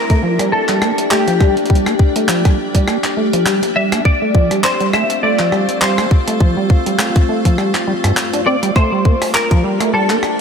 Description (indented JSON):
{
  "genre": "IDM",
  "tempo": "102 BPM",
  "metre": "4/4",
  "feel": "swing 56% on 16ths",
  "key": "G dorian",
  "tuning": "A4 = 440 Hz",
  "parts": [
    { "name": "semi-hollow electric guitar", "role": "melody", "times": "0.0-10.4 s", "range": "G4 to E5", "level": "-18 LUFS", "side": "left 1 dB", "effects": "ensemble chorus, tape echo, shimmer reverb" },
    { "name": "icy glass pad", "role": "sustained chords", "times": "0.0-10.4 s", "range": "A3 to G5", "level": "-20 LUFS", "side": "left 3 dB", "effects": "chorus, built-in reverb, shimmer reverb" },
    { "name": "deep acid bass", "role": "arpeggios", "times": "0.1-10.2 s", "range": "G2 to D4", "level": "-18 LUFS", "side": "right 2 dB", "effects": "wide subtle chorus, cassette tape, tape echo, shimmer reverb" },
    { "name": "electronic kick drum", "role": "drums", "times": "0.1-9.6 s", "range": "none", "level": "-12 LUFS", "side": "equal", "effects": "none" },
    { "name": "jungle sampler-style drum kit", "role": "drums", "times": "0.1-10.4 s", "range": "handclaps, hi-hat, rim click", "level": "-20 LUFS", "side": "equal", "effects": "none" }
  ],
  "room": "moderate lush hall reverb, RT60 2.5 s",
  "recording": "none",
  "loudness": "-12 LUFS",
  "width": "side -6 dB against mid",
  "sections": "0.0-10.4 A section",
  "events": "none",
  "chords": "0.0 Gm; 4.1 F; 8.8 Gm",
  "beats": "0.52 1.11 | 1.70 2.29 2.88 3.46 | 4.05 4.64 5.23 5.82 | 6.41 6.99 7.58 8.17 | 8.76 9.35 9.93"
}